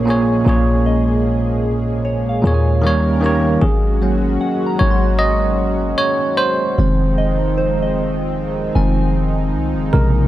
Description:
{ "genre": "R&B", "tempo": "76 BPM", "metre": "4/4", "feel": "straight", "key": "unclear", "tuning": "A4 = 440 Hz", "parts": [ { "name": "bell-like tine electric piano", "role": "accompaniment", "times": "0.0-10.3 s", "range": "Bb2 to Eb5", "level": "-17 LUFS", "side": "right 1 dB", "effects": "medium stereo tremolo" }, { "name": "chorused pulse-width pad", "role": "sustained chords", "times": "0.0-10.3 s", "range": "Bb2 to Bb4", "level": "-23 LUFS", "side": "equal", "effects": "none" }, { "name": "warm 808-style bass", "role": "bass", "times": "0.0-10.3 s", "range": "F1 to Eb2", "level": "-18 LUFS", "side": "left 1 dB", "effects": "none" }, { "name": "soft synth bell", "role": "texture", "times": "0.0-10.3 s", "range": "Bb4 to C6", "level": "-28 LUFS", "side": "equal", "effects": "chorus, tape echo" } ], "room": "little or no reverb", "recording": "dry, gritty hardware recording", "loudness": "-14 LUFS", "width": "side -14 dB against mid", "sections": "0.0-3.6 A section; 3.6-10.3 B section", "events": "tine electric piano solo 3.6-10.3", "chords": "0.0 Bbm7; 2.8 Eb7; 3.6 Ab7sus4; 6.8 Fm7", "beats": "| 0.47 1.25 2.04 2.83 | 3.62 4.41 5.20 5.99 | 6.78 7.57 8.36 9.15 | 9.94" }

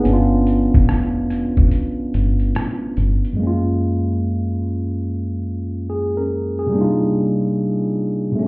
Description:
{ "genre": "lo-fi hip hop", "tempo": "72 BPM", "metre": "4/4", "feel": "swing 64% on 16ths", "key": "F# major", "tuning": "A4 = 436 Hz", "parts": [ { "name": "tine electric piano", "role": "accompaniment", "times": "0.0-8.5 s", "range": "F#2 to A#4", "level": "-18 LUFS", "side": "equal", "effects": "cassette tape, low-pass filter" }, { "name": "deep dub fingered electric bass", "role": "bass", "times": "0.1-3.2 s", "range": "E1 to G1", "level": "-18 LUFS", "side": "equal", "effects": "none" }, { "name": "trip hop sampler-style drum kit", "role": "drums", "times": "0.1-3.4 s", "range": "hi-hat, kick drum, rim click", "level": "-16 LUFS", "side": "equal", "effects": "none" } ], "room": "wet small room reverb, RT60 0.5 s", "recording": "heard muffled through a wall, club reverb, EQ", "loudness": "-16 LUFS", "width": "side -26 dB against mid", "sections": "0.0-3.4 A section; 3.4-8.5 B section", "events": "break 1.7-3.4", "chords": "0.1 G7#11; 3.4 F#maj9; 6.7 Cm11", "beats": "| 0.06 0.89 1.72 2.56 | 3.39 4.22 5.06 5.89 | 6.72 7.56 8.39" }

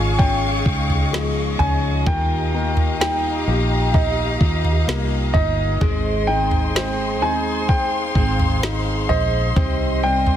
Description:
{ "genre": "pop ballad", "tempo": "64 BPM", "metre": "4/4", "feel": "straight", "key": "Ab major", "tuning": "A4 = 445 Hz", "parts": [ { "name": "warm baby grand piano", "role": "melody", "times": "0.0-10.4 s", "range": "Eb5 to Ab5", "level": "-24 LUFS", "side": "right 2 dB", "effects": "none" }, { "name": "bright upright piano", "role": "accompaniment", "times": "0.0-10.4 s", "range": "Db3 to C5", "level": "-26 LUFS", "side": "left 8 dB", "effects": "none" }, { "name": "dark studio string section", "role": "sustained chords", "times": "0.0-10.4 s", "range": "G3 to Db6", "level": "-27 LUFS", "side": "left 3 dB", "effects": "none" }, { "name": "picked steel-string acoustic guitar", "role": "arpeggios", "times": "0.0-10.4 s", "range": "Ab2 to Ab4", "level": "-29 LUFS", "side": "right 9 dB", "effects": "none" }, { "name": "vintage muted fingered electric bass", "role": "bass", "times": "0.0-10.4 s", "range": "G1 to Eb2", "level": "-22 LUFS", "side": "equal", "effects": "none" }, { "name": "smooth R&B drum kit", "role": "drums", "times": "0.2-10.4 s", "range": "kick drum, snare drum, toms", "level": "-21 LUFS", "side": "equal", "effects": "none" } ], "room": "light reverb, small room reverb", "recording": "dense, heavily limited modern master", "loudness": "-17 LUFS", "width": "side -10 dB against mid", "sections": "0.0-10.4 A section", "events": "none", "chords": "0.0 Dbadd9; 2.1 Ebadd9; 5.8 Ab; 9.6 Cm", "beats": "0.19 1.13 | 2.06 3.00 3.94 4.88 | 5.82 6.75 7.69 8.63 | 9.56" }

